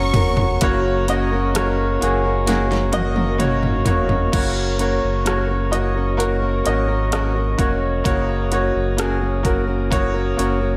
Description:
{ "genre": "pop ballad", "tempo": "64 BPM", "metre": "4/4", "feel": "straight", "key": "F# major", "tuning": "A4 = 438 Hz", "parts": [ { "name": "warm studio violin section", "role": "second line", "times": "0.0-0.6 s", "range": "C#6", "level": "-30 LUFS", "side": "equal", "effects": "none" }, { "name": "bright upright piano", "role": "accompaniment", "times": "0.0-10.8 s", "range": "C#3 to D#5", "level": "-24 LUFS", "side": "equal", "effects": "slapback echo" }, { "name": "glass harmonica", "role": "sustained chords", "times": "0.0-10.8 s", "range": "F#4 to D#6", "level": "-28 LUFS", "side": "equal", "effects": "none" }, { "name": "fingerpicked plugged-in steel-string acoustic guitar", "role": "arpeggios", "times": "0.0-10.8 s", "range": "F#3 to A#4", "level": "-28 LUFS", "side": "equal", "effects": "slapback echo" }, { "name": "sub bass with octave", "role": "bass", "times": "0.0-10.8 s", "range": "E#1 to G#1", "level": "-25 LUFS", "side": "equal", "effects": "none" }, { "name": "pop drum kit", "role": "drums", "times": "0.1-10.6 s", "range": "crash cymbal, hi-hat, kick drum, ride cymbal, rim click, snare drum, toms", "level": "-25 LUFS", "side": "equal", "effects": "overdrive" } ], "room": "moderate scoring stage reverb, RT60 1.9 s, small room ambience", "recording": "big arena sound", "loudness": "-19 LUFS", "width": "mono", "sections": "0.6-4.3 A section; 4.3-10.8 B section", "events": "drum fill 0.0-0.6, 2.5-4.3", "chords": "0.0 F#" }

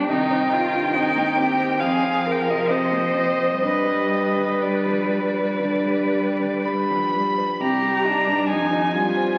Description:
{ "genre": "classical, slow romantic movement for piano quartet", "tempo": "54-72 BPM", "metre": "4/4", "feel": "rubato", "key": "C minor", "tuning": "A4 = 440 Hz", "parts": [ { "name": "rich violin", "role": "second line", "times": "0.0-9.4 s", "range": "D4 to C5", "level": "-27 LUFS", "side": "equal", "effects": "none" }, { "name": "warm cello", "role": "second line", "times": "0.0-9.4 s", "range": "Eb3 to G3", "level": "-31 LUFS", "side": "equal", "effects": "none" }, { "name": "clear grand piano", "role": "accompaniment", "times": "0.0-9.4 s", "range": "B1 to C5", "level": "-27 LUFS", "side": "equal", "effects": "none" }, { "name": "rich violin", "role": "melody", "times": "0.1-9.4 s", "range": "D5 to B5", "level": "-26 LUFS", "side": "equal", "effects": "none" } ], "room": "wet scoring stage reverb, RT60 1.9 s", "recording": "very old 78 rpm record, vinyl crackle", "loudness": "-21 LUFS", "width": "mono", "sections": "0.0-9.4 A section", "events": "none", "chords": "0.1 Cm; 1.8 Fm; 3.6 G; 7.6 Cm" }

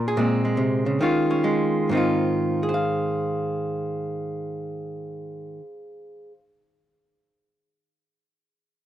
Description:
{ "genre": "solo jazz", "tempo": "133-150 BPM", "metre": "4/4", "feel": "swing 66% on 8ths", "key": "Ab major", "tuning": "A4 = 440 Hz", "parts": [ { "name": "archtop guitar, miked and amplified", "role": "solo", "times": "0.0-6.4 s", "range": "Ab2 to F5", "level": "-22 LUFS", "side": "equal", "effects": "none" } ], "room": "little or no reverb", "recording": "dry, close 1970s-style studio recording", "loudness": "-21 LUFS", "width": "side -11 dB against mid", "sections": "0.0-1.9 A section; 1.9-5.5 B section", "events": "slowing down 0.0-1.9", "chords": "0.2 Bbm9; 1.0 Eb9sus4; 1.9 Ab6" }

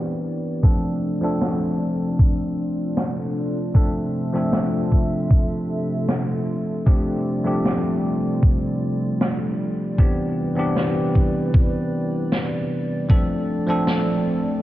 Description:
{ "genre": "vaporwave", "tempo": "77 BPM", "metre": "4/4", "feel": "straight", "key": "D dorian", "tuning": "A4 = 439 Hz", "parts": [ { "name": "bell-like tine electric piano", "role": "accompaniment", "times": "0.0-14.6 s", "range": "E3 to A4", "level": "-23 LUFS", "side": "equal", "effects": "lush chorus, analog delay" }, { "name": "warbly tape-like pad", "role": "sustained chords", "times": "0.0-14.6 s", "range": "C3 to E5", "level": "-28 LUFS", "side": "equal", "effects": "chorus, built-in reverb" }, { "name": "electronic kick drum", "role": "drums", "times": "0.6-13.3 s", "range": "none", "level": "-17 LUFS", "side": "equal", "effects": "none" }, { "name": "snare drum", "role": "drums", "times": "1.4-14.0 s", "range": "none", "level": "-26 LUFS", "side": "equal", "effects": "low-pass filter on snare, low-pass filter on room" } ], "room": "light reverb, small room ambience", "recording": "cassette tape, low-pass filter", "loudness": "-19 LUFS", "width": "side -15 dB against mid", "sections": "0.0-14.6 A section", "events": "filter sweep 0.0-14.6", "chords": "0.0 Cmaj9; 0.6 Dm7; 6.9 G9sus4; 10.0 Cmaj9; 13.1 Dm7" }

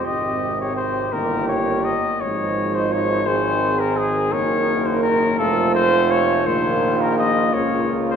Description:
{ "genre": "classical, brass quintet", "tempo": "56 BPM (dotted quarters)", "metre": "6/8", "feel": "rubato", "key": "Bb minor from 4.3 s", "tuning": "A4 = 436 Hz", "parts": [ { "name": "mellow trumpet", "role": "melody", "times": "0.0-8.2 s", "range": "Ab4 to Eb5", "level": "-21 LUFS", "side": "left 4 dB", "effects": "none" }, { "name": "warm flugelhorn", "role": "second line", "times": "0.0-8.2 s", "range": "Eb4 to Bb4", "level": "-25 LUFS", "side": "right 5 dB", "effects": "none" }, { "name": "warm French horn", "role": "accompaniment", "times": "0.0-8.2 s", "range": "Ab3 to C4", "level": "-26 LUFS", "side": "left 3 dB", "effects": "none" }, { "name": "warm trombone", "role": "accompaniment", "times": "0.0-8.2 s", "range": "C3 to F3", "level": "-26 LUFS", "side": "right 4 dB", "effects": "none" }, { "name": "brilliant bass trombone", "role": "bass", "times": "0.0-8.2 s", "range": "F1 to Db2", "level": "-26 LUFS", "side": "right 2 dB", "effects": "none" } ], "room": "wet church reverb, RT60 3.5 s", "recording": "recorded in a church or concert hall", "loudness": "-17 LUFS", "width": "side -7 dB against mid", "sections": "0.0-8.2 A section", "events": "none", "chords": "0.1 Ab; 1.1 Eb/G; 2.2 Ab; 4.3 Ebm/Gb; 5.4 F; 6.5 Bb5; 7.5 Bbm/Db" }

